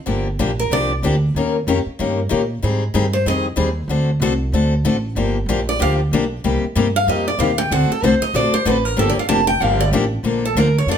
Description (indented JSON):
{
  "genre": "acoustic string swing (jazz manouche)",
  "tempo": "189 BPM",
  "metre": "4/4",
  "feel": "swing 59% on 8ths",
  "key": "G minor",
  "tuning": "A4 = 440 Hz",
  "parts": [
    { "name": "picked steel-string acoustic guitar", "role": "accompaniment", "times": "0.1-11.0 s", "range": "C3 to Bb4", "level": "-20 LUFS", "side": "left 4 dB", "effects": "none" },
    { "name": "upright bass", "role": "bass", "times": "0.1-11.0 s", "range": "F1 to Bb2", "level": "-20 LUFS", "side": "right 1 dB", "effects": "none" },
    { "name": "picked steel-string acoustic guitar", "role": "melody", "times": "0.6-0.9, 3.1-3.5, 5.7-11.0 s", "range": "A4 to A5", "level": "-19 LUFS", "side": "right 2 dB", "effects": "none" }
  ],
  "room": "moderate studio reverb, RT60 0.7 s",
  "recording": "none",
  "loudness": "-16 LUFS",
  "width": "side -8 dB against mid",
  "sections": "0.1-10.2 A section",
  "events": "steel-string acoustic guitar solo 0.1-11.0",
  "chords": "0.1 Gm7; 1.4 Eb7; 2.6 Abmaj7; 3.9 D7; 5.2 Gm7; 6.4 Cm7; 7.7 D7; 9.0 Gm9; 10.2 Bbmaj7",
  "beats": "| 0.08 0.40 0.72 1.03 | 1.35 1.67 1.99 2.31 | 2.62 2.94 3.26 3.58 | 3.90 4.22 4.53 4.85 | 5.17 5.49 5.80 6.12 | 6.44 6.76 7.08 7.39 | 7.71 8.03 8.34 8.66 | 8.98 9.29 9.61 9.93 | 10.25 10.56 10.88"
}